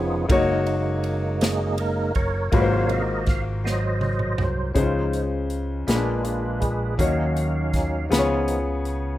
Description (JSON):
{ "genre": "slow gospel", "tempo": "54 BPM (dotted quarters)", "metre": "6/8", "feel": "straight", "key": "Db major", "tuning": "A4 = 438 Hz", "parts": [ { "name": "clear grand piano", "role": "accompaniment", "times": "0.0-9.2 s", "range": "Ab2 to Db5", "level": "-25 LUFS", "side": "left 3 dB", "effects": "none" }, { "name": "percussive tonewheel organ", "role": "sustained chords", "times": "0.0-8.6 s", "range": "C3 to F5", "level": "-27 LUFS", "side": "right 2 dB", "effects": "slow rotary speaker, chorus vibrato" }, { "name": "fingered electric bass", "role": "bass", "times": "0.0-9.2 s", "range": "F1 to Eb2", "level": "-26 LUFS", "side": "equal", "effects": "none" }, { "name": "natural country drum kit", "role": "drums", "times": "0.3-9.0 s", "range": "hi-hat, kick drum, ride cymbal, snare drum, toms", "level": "-25 LUFS", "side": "equal", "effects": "none" } ], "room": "small room ambience", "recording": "rough home demo mix", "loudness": "-20 LUFS", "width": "side -14 dB against mid", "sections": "0.0-4.8 A section; 4.8-9.2 B section", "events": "tonewheel organ solo 0.0-4.8, 4.8-9.2; drum fill 3.6-4.8", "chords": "0.3 Gb6; 2.5 Ab13; 4.8 Dbmaj7; 5.9 Bb7b9; 7.0 Ebm7; 8.1 Db7" }